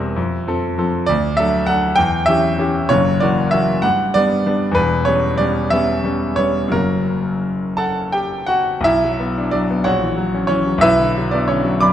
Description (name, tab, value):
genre	classical, romantic character piece for solo piano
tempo	55-68 BPM (dotted quarters)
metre	6/8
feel	rubato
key	B minor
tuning	A4 = 442 Hz
part	clear grand piano	solo	0.0-11.9 s	E1 to D6	-15 LUFS	equal	none
room	wet concert hall reverb, RT60 2.2 s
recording	none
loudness	-15 LUFS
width	side -10 dB against mid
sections	0.0-8.8 A section; 8.8-11.9 B section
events	none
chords	0.2 F; 1.1 D; 2.0 C#dim/E; 2.9 F#7; 3.8 G; 4.8 C#m7b5/E; 6.7 F#; 8.8 Bm; 9.8 F#7/A#; 10.8 Bm